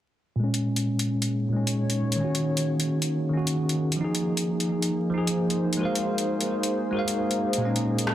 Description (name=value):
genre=future garage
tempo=133 BPM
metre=4/4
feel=swing 62% on 16ths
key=Bb minor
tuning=A4 = 438 Hz
part: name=bell-like tine electric piano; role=accompaniment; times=0.4-8.1 s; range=Bb2 to F5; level=-25 LUFS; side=equal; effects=fast stereo tremolo, vintage 12-bit sampler grit, low-pass filter, tape echo
part: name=deep house drum kit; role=drums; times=0.5-8.1 s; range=hi-hat, rim click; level=-30 LUFS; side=left 1 dB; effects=soft clipping on snare
part: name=warbly tape-like pad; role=sustained chords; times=1.3-8.1 s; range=Bb3 to Db5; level=-30 LUFS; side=left 1 dB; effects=chorus, built-in reverb
room=moderate lush hall reverb, RT60 1.8 s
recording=dense, heavily limited modern master, vinyl crackle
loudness=-23 LUFS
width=side -12 dB against mid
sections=0.4-8.1 A section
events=filter sweep on tine electric piano 0.4-8.1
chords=0.4 Bbm7; 2.2 Ebm7; 4.0 Fm7; 5.8 Ab13; 7.6 Bbm7